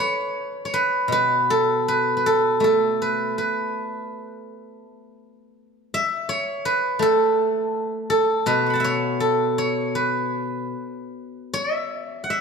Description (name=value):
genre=chinese traditional, Chinese solo plucked strings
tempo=81 BPM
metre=4/4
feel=uneven beats, rubato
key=unclear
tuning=A4 = 444 Hz
part: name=steel-string zither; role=solo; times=0.0-12.4 s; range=B2 to C#6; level=-20 LUFS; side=equal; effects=none
room=moderate concert hall reverb, RT60 1.9 s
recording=none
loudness=-20 LUFS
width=side -5 dB against mid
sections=0.0-12.4 A section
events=none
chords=none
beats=0.34 1.10 1.86 | 2.62 3.36 4.10 4.84 | 5.57 6.29 7.01 7.74 | 8.47 9.21 9.96 10.73 | 11.53 12.30